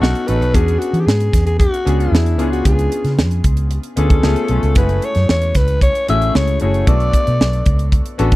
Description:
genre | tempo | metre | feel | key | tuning
polished 1980s jazz-funk pop | 114 BPM | 4/4 | straight | F# minor | A4 = 440 Hz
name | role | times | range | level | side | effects
breathy alto saxophone | melody | 0.0-7.9 s | E4 to E5 | -21 LUFS | left 1 dB | none
clear concert grand piano | accompaniment | 0.0-8.4 s | G#3 to A4 | -22 LUFS | left 2 dB | lush chorus
vintage muted fingered electric bass | bass | 0.0-8.4 s | F#1 to E3 | -16 LUFS | equal | none
crisp fusion drum kit | drums | 0.0-8.4 s | hi-hat, kick drum, snare drum | -16 LUFS | equal | none
room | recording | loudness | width
little or no reverb | dry, close 1970s-style studio recording | -13 LUFS | side -18 dB against mid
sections
0.0-8.4 A section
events
none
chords
0.0 B9; 0.5 E13; 2.4 C#7b9; 4.2 C#7b13; 4.8 F#m9; 6.9 Bm9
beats
0.01 | 0.54 1.07 1.59 2.12 | 2.65 3.18 3.71 4.23 | 4.76 5.29 5.81 6.34 | 6.87 7.39 7.92

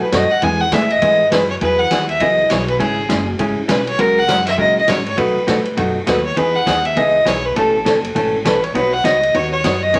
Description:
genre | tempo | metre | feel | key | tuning
country, western swing | 202 BPM | 4/4 | swing 61% on 8ths | E major | A4 = 440 Hz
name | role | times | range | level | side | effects
rich fiddle | melody | 0.0-10.0 s | G#4 to G#5 | -18 LUFS | equal | none
hollow-body jazz guitar | accompaniment | 0.0-10.0 s | B2 to C#5 | -22 LUFS | equal | none
upright bass | bass | 0.0-10.0 s | F#1 to B2 | -28 LUFS | equal | none
vintage drum kit | drums | 0.1-10.0 s | hi-hat, kick drum, ride cymbal, snare drum | -26 LUFS | equal | none
room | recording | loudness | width
wet studio reverb, RT60 0.6 s | vinyl crackle | -16 LUFS | mono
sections
0.0-1.6 A section; 1.6-10.0 B section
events
fiddle solo 0.0-1.6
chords
0.4 E; 1.6 Eadd9; 2.8 C#m; 4.0 F#add9/C#; 5.2 B7; 6.4 Emaj7; 7.6 Aadd9; 8.7 Badd9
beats
0.13 | 0.42 0.72 1.02 1.31 | 1.61 1.91 2.20 2.50 | 2.80 3.10 3.39 3.69 | 3.99 4.29 4.58 4.88 | 5.18 5.47 5.77 6.07 | 6.37 6.67 6.96 7.26 | 7.56 7.86 8.15 8.45 | 8.75 9.05 9.35 9.64 | 9.94

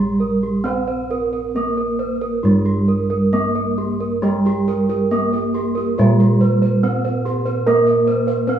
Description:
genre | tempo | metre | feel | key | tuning
Javanese gamelan | 67-75 BPM | 4/4 | straight | unclear | A4 = 440 Hz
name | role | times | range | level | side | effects
gamelan-type bronze metallophone | melody | 0.0-8.6 s | G3+20c to C4-50c | -19 LUFS | right 1 dB | none
gamelan-type bronze metallophone | arpeggios | 0.0-8.6 s | G4+20c to C5-50c | -24 LUFS | right 4 dB | tape echo
gamelan-type bossed gongs | bass | 0.0-8.6 s | Bb1 to C5-50c | -20 LUFS | right 1 dB | none
gamelan-type bossed gongs | arpeggios | 4.2-8.6 s | G4+20c to F5-40c | -25 LUFS | right 2 dB | none
room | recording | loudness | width
wet large studio reverb, RT60 0.9 s | band playing live in one room | -16 LUFS | side -9 dB against mid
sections
0.0-8.6 A section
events
none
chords
none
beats
| 0.64 1.54 2.44 3.33 | 4.23 5.11 5.98 6.83 | 7.66 8.47

